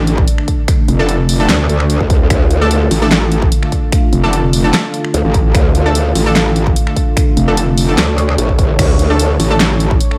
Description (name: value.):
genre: heavy wobble dubstep.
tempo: 148 BPM.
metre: 4/4.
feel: half-time.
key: D harmonic minor.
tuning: A4 = 441 Hz.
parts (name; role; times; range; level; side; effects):
lush unison pad; sustained chords; 0.0-10.2 s; D3 to C#5; -22 LUFS; equal; chorus, vintage 12-bit sampler grit, sidechain pumping.
metallic wobble bass; bass; 0.0-10.0 s; F1 to D2; -16 LUFS; equal; distortion, chorus, overdrive.
big-room dance drum kit; drums; 0.1-10.2 s; crash cymbal, finger snaps, handclaps, hi-hat, snare drum; -20 LUFS; equal; studio reverb.
electronic kick drum; drums; 0.2-10.0 s; none; -15 LUFS; equal; studio reverb.
orchestra-hit-like synth stab; stabs; 1.0-9.7 s; A3 to A4; -22 LUFS; equal; built-in reverb, tape echo.
growl bass; bass; 2.0-9.4 s; A1 to D2; -15 LUFS; equal; chorus, overdrive.
room: digital ambience.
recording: none.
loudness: -13 LUFS.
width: mono.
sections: 0.0-10.2 A section.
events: none.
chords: 0.0 D5.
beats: 0.28 | 0.68 1.09 1.49 1.90 | 2.30 2.71 3.11 3.52 | 3.92 4.33 4.74 5.14 | 5.55 5.95 6.36 6.76 | 7.17 7.57 7.98 8.38 | 8.79 9.20 9.60 10.01.